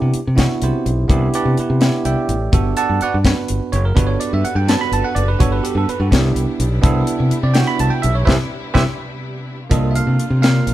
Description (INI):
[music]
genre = electric jazz fusion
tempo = 84 BPM (dotted quarters)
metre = 6/8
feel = straight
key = C lydian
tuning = A4 = 440 Hz
[part]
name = bell-like tine electric piano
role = accompaniment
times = 0.0-10.7 s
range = Bb3 to B5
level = -20 LUFS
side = right 4 dB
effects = none
[part]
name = modern bright fingered electric bass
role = bass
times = 0.0-10.7 s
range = F#1 to C3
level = -18 LUFS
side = equal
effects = none
[part]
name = tight funk drum kit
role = drums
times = 0.1-10.7 s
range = hi-hat, kick drum, snare drum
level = -17 LUFS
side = left 1 dB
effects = none
[part]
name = rich studio string section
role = sustained chords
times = 4.0-10.7 s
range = C3 to B4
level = -28 LUFS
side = equal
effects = none
[sound]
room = moderate stone room reverb, RT60 1.3 s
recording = band playing live in one room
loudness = -14 LUFS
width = side -14 dB against mid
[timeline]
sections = 0.0-9.7 A section; 9.7-10.7 A section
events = band accent 8.3-9.7; drum fill 9.0-9.7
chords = 0.0 Cmaj9; 2.5 Gmaj9; 6.1 Cmaj9; 9.7 C13sus4